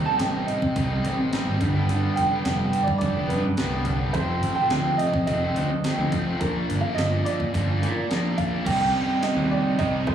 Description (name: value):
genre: indie rock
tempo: 106 BPM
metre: 4/4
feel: straight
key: C dorian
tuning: A4 = 438 Hz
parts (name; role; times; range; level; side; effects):
- clear upright piano; melody; 0.0-10.1 s; Bb4 to A5; -27 LUFS; right 3 dB; slapback echo
- fuzz guitar; riff; 0.0-10.1 s; F2 to Eb4; -25 LUFS; left 2 dB; distortion, slapback echo
- modern bright picked electric bass; bass; 0.0-10.1 s; F1 to C3; -26 LUFS; right 2 dB; none
- clean 12-bit digital drum machine; drums; 0.2-10.1 s; crash cymbal, hi-hat, kick drum, snare drum; -30 LUFS; right 1 dB; none
- cranked stack guitar; riff; 8.7-10.1 s; G3 to Eb4; -29 LUFS; right 12 dB; overdrive, analog chorus, slapback echo
room: light reverb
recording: live gig heard through the venue's PA, club reverb, small room reverb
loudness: -21 LUFS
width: side -9 dB against mid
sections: 0.0-8.7 A section; 8.7-10.1 B section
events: none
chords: 0.0 Cm; 1.6 G; 4.1 F; 6.4 Bb; 8.7 Cm